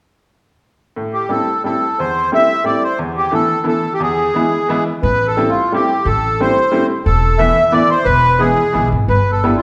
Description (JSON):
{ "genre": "musette", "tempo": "177 BPM", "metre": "3/4", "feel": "rubato", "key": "A minor", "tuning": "A4 = 440 Hz", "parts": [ { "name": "bright upright piano", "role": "accompaniment", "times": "1.0-9.6 s", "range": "E2 to E4", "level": "-21 LUFS", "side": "equal", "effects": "none" }, { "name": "accordion", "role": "melody", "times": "1.1-9.6 s", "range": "F4 to E5", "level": "-17 LUFS", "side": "equal", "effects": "light tremolo tuning" }, { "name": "upright bass", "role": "bass", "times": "5.0-9.5 s", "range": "E1 to B1", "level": "-20 LUFS", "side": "equal", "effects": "none" } ], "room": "wet recital hall reverb, RT60 1.5 s", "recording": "recorded in a church or concert hall", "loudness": "-15 LUFS", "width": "mono", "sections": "1.0-5.0 A section; 5.0-9.6 B section", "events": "none", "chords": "1.0 Am7; 3.0 Esus4; 4.0 E; 5.0 Am7; 7.1 Esus4; 8.1 E; 9.1 G6" }